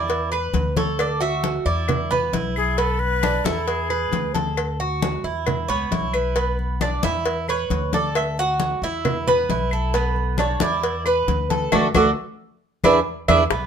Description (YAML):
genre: latin, Cuban son and guajira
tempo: 134 BPM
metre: 4/4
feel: straight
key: unclear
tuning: A4 = 440 Hz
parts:
  - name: Cuban tres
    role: melody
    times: 0.0-2.5, 5.7-13.4 s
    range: F#4 to F#5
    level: -23 LUFS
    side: right 1 dB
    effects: none
  - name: Cuban tres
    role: arpeggios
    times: 0.0-13.7 s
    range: A3 to B4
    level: -24 LUFS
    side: right 5 dB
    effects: none
  - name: upright bass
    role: bass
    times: 0.0-13.7 s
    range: B1 to E2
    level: -26 LUFS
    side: left 1 dB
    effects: none
  - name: congas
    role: percussion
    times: 0.1-13.7 s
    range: none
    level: -26 LUFS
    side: left 3 dB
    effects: none
  - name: cowbell and bongos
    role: percussion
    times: 0.1-13.7 s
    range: none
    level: -28 LUFS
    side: left 1 dB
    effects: none
  - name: claves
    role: percussion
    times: 0.3-13.4 s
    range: none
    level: -30 LUFS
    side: left 7 dB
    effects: none
  - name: breathy bright jazz flute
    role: second line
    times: 2.6-4.6 s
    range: G#4 to B4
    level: -24 LUFS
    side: left 6 dB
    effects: none
room: light reverb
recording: minimal, uncompressed stereo recording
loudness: -19 LUFS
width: side -7 dB against mid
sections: 0.0-13.5 A section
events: band accent 11.7-13.5; drum fill 12.8-13.5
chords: 0.1 E5; 1.0 D; 1.9 E5; 2.8 Bm; 3.7 E7; 4.6 D; 5.5 E5; 6.4 Bm; 7.3 E5; 8.2 D; 9.1 E5; 9.9 Bm7; 10.8 E5; 11.7 D; 12.6 E7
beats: 0.09 0.54 | 0.99 1.44 1.88 2.33 | 2.78 3.23 3.67 4.12 | 4.57 5.02 5.47 5.92 | 6.36 6.81 7.26 7.71 | 8.15 8.60 9.05 9.50 | 9.94 10.39 10.84 11.28 | 11.73 12.18 12.62 13.06 | 13.51